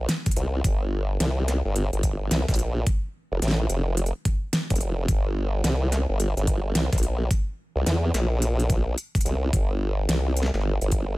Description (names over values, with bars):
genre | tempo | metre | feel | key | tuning
glitch hop | 108 BPM | 4/4 | swing 63% on 16ths | G dorian | A4 = 444 Hz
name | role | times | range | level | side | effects
formant-sweep wobble bass | bass | 0.0-11.2 s | F1 to E2 | -24 LUFS | equal | chorus
pop drum kit | drums | 0.1-11.1 s | hi-hat, snare drum | -28 LUFS | equal | studio reverb
electronic kick drum | drums | 0.3-11.1 s | none | -24 LUFS | equal | studio reverb
room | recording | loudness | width
digital ambience | none | -22 LUFS | side -19 dB against mid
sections
0.0-11.2 A section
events
none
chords
none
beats
0.09 | 0.64 1.20 1.75 2.31 | 2.86 3.42 3.97 4.53 | 5.08 5.64 6.20 6.75 | 7.31 7.86 8.42 8.97 | 9.53 10.09 10.64